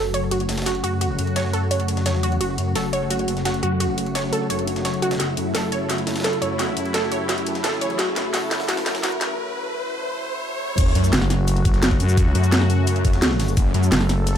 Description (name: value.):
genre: dark technical drum and bass.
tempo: 172 BPM.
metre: 4/4.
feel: straight.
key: F# minor.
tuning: A4 = 440 Hz.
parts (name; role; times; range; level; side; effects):
sweeping resonant pad; sustained chords; 0.0-14.4 s; C#3 to A4; -26 LUFS; left 1 dB; chorus, sidechain pumping.
wide unison pluck; arpeggios; 0.0-9.1 s; F#4 to C#5; -26 LUFS; right 2 dB; sidechain pumping, dub echo.
wide detuned saw bass; bass; 0.0-13.9 s; E1 to F#2; -24 LUFS; equal; chorus, tube saturation.
riser and sub drop; sound effects; 3.3-12.2 s; none; -30 LUFS; equal; none.
breakbeat sampler-style drum kit; drums; 0.1-14.4 s; hi-hat, ride cymbal, snare drum; -33 LUFS; right 1 dB; high-pass filter on cymbals, high-pass filter on snare, high-pass filter on hats.
drum and bass drum kit; drums; 0.1-14.4 s; crash cymbal, hi-hat, shaker, snare drum; -25 LUFS; equal; high-pass filter on hats, high-pass filter on snare, high-pass filter on cymbals, high-pass filter on perc, high-pass filter on room.
electronic kick drum; drums; 10.8-13.6 s; none; -19 LUFS; equal; none.
growling FM bass; bass; 11.1-14.4 s; F#1 to F#2; -20 LUFS; equal; none.
room: light reverb.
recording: high-pass filter.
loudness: -19 LUFS.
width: side -9 dB against mid.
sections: 0.0-10.8 A section; 10.8-14.4 B section.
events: build-up 0.0-10.8; filter sweep 0.0-10.8; riser 3.3-10.8; drum fill 5.2-9.4; break 9.4-10.8; drop 10.8-14.4; impact 10.8-12.2.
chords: 0.0 F#m.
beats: 0.31 0.66 | 1.01 1.36 1.71 2.06 | 2.41 2.76 3.10 3.45 | 3.80 4.15 4.50 4.85 | 5.20 5.55 5.90 6.24 | 6.59 6.94 7.29 7.64 | 7.99 8.34 8.69 9.04 | 9.38 9.73 10.08 10.43 | 10.78 11.13 11.48 11.83 | 12.18 12.52 12.87 13.22 | 13.57 13.92 14.27.